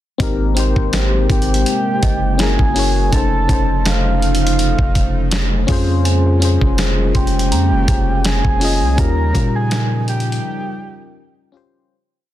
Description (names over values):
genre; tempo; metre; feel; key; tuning
contemporary R&B; 82 BPM; 4/4; swing 54% on 16ths; Ab major; A4 = 440 Hz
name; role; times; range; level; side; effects
FM electric piano with tremolo; accompaniment; 0.2-11.9 s; G3 to Eb5; -22 LUFS; left 6 dB; none
chorused pulse-width pad; sustained chords; 0.2-11.9 s; C3 to G4; -23 LUFS; right 2 dB; none
long sustained 808-style bass; bass; 0.2-10.4 s; F1 to Bb2; -17 LUFS; equal; none
dusty soul sampler-style drum kit; drums; 0.2-10.4 s; hi-hat, kick drum, snare drum; -19 LUFS; equal; none
small celesta; texture; 0.6-8.3 s; Eb5 to C6; -34 LUFS; right 6 dB; none
soft octave-layered synth lead; melody; 1.3-11.5 s; F5 to Bb5; -22 LUFS; right 1 dB; chorus, digital delay
room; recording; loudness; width
digital ambience; dense, heavily limited modern master; -14 LUFS; side -13 dB against mid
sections
0.2-11.9 chorus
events
fade-out 9.0-11.9; break 10.4-11.9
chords
0.2 Abmaj9; 2.4 Gb9; 3.1 F7b13; 5.7 Bbm9/F; 9.0 Eb9